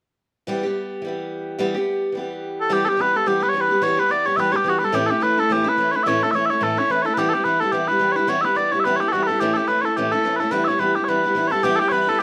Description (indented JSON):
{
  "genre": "celtic folk",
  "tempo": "215 BPM",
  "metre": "4/4",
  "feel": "swing 57% on 8ths",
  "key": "E dorian",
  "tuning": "A4 = 441 Hz",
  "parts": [
    { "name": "picked steel-string acoustic guitar", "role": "accompaniment", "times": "0.5-12.2 s", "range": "A2 to G4", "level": "-25 LUFS", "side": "equal", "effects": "none" },
    { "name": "mellow small bagpipes", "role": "melody", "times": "2.6-12.2 s", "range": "F#4 to E5", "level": "-21 LUFS", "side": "equal", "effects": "none" },
    { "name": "accordion", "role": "second line", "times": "11.5-12.2 s", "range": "G4 to B4", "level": "-30 LUFS", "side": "equal", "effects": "none" }
  ],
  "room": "light reverb",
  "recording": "close, detailed microphones",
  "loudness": "-20 LUFS",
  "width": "mono",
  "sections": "0.5-2.7 A section; 2.7-11.6 B section",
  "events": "none",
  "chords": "0.5 Em; 4.9 A; 7.2 Em; 9.4 A; 10.5 Em"
}